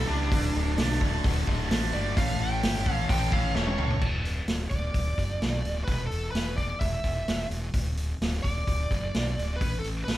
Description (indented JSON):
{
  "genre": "classic rock",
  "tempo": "129 BPM",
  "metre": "4/4",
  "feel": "straight",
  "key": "D major",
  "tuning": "A4 = 441 Hz",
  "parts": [
    { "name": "bluesy overdriven lead guitar", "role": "melody", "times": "0.0-10.2 s", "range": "D4 to G5", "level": "-33 LUFS", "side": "equal", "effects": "distortion" },
    { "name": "mellow tonewheel organ", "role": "sustained chords", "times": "0.0-4.0 s", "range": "E3 to B4", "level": "-40 LUFS", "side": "right 1 dB", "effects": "slow rotary speaker, overdrive, chorus vibrato" },
    { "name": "crunchy overdriven guitar", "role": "riff", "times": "0.0-4.0 s", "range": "D2 to A4", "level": "-35 LUFS", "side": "left 7 dB", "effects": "none" },
    { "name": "tight distorted guitar", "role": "riff", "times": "0.0-4.0 s", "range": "D2 to A4", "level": "-34 LUFS", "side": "right 6 dB", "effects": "distortion" },
    { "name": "fuzz fingered electric bass", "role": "bass", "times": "0.0-10.2 s", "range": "D1 to C#2", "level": "-30 LUFS", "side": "equal", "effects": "overdrive" },
    { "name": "vintage drum kit", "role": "drums", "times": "0.3-10.2 s", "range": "crash cymbal, hi-hat, kick drum, snare drum, toms", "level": "-29 LUFS", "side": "equal", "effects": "none" }
  ],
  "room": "moderate large studio reverb, RT60 0.9 s",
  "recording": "band playing live in one room",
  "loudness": "-25 LUFS",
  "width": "side -14 dB against mid",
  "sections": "0.0-4.0 A section; 4.0-10.2 B section",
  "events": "lead electric guitar solo 0.0-4.0; drum fill 3.6-4.0",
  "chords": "0.3 D; 2.2 A; 4.0 N.C.; 5.9 E5; 7.7 N.C.; 9.6 A5",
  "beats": "| 0.31 0.78 1.24 1.70 | 2.16 2.63 3.09 3.55 | 4.02 4.48 4.95 5.41 | 5.88 6.35 6.81 7.28 | 7.75 8.21 8.68 9.14 | 9.61 10.08"
}